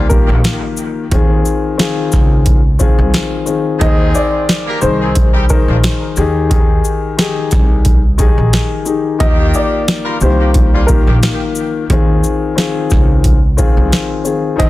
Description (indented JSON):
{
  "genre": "hip hop, boom-bap hip-hop",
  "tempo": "89 BPM",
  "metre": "4/4",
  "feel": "swing 55% on 16ths",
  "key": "unclear",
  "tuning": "A4 = 440 Hz",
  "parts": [
    { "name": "warm upright piano", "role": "melody", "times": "0.0-14.7 s", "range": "Bb4 to Eb5", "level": "-20 LUFS", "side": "equal", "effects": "high-pass filter, low-pass filter, digital delay" },
    { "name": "dark baby grand piano", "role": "accompaniment", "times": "0.0-14.7 s", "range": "Eb3 to C5", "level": "-17 LUFS", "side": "left 5 dB", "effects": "cassette tape, high-pass filter, low-pass filter" },
    { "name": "clear horn section", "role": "stabs", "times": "0.0-14.7 s", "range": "Bb2 to Bb4", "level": "-23 LUFS", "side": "equal", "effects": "high-pass filter, low-pass filter, digital delay" },
    { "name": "upright bass", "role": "bass", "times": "0.0-14.7 s", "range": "Bb1 to Eb2", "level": "-16 LUFS", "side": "equal", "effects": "none" },
    { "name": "booming analog drum machine", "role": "drums", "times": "0.1-14.7 s", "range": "hi-hat, kick drum, shaker, snare drum", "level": "-13 LUFS", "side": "equal", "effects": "none" }
  ],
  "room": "studio ambience",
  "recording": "dense, heavily limited modern master",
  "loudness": "-10 LUFS",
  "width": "side -16 dB against mid",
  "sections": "0.0-14.7 A section",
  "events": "none",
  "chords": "0.0 Ebadd9; 1.1 Dbmaj7; 3.8 Ab; 6.2 Bb9sus4 (rootless); 9.2 Ebadd9; 11.9 Dbmaj7"
}